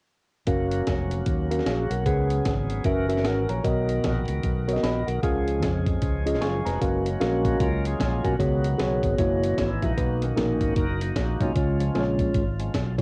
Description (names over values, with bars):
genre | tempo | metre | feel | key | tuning
uptempo gospel | 152 BPM | 4/4 | swing 61% on 8ths | F# major | A4 = 441 Hz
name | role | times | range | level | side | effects
mellow tine electric piano | accompaniment | 0.5-13.0 s | B2 to C#6 | -28 LUFS | equal | cassette tape
bright tonewheel organ | sustained chords | 0.5-13.0 s | B2 to A#4 | -34 LUFS | equal | slow rotary speaker, cassette tape
modern bright fingered electric bass | bass | 0.5-13.0 s | E#1 to E#2 | -30 LUFS | equal | none
breakbeat sampler-style drum kit | drums | 0.5-13.0 s | hi-hat, kick drum, snare drum | -31 LUFS | equal | cassette tape
room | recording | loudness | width
light reverb | home recording on cassette | -25 LUFS | mono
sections
0.5-6.8 A section; 6.8-13.0 B section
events
tine electric piano fill 6.2-6.8; tonewheel organ solo 6.8-13.0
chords
0.5 F#maj7; 2.1 C#7sus4; 2.9 F#7; 3.6 Bmaj7; 5.2 C#; 6.8 F#maj7; 8.4 C#7sus4; 9.2 F#7; 10.0 Bmaj7; 11.6 C#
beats
| 0.47 0.87 1.27 1.66 | 2.06 2.45 2.85 3.25 | 3.64 4.04 4.44 4.83 | 5.23 5.62 6.02 6.42 | 6.81 7.21 7.60 8.00 | 8.39 8.79 9.19 9.58 | 9.98 10.37 10.77 11.16 | 11.56 11.95 12.35 12.74